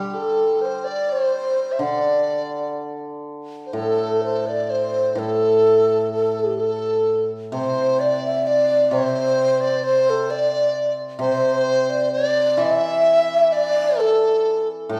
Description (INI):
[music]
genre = chinese traditional, Chinese chamber ensemble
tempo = 64 BPM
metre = 4/4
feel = rubato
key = D shang mode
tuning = A4 = 441 Hz
[part]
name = breathy mellow low xiao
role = melody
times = 0.0-15.0 s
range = G4 to E5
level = -22 LUFS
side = equal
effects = none
[part]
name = mellow large dizi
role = second line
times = 0.0-15.0 s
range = G4 to E5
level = -25 LUFS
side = equal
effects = none
[part]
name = hammered dulcimer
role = accompaniment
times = 0.0-15.0 s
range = A2 to G3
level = -30 LUFS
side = equal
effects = none
[sound]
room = wet recital hall reverb, RT60 1.6 s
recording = heard from further back in the room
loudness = -20 LUFS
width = mono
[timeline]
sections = 0.0-3.8 A section; 3.8-15.0 B section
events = none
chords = none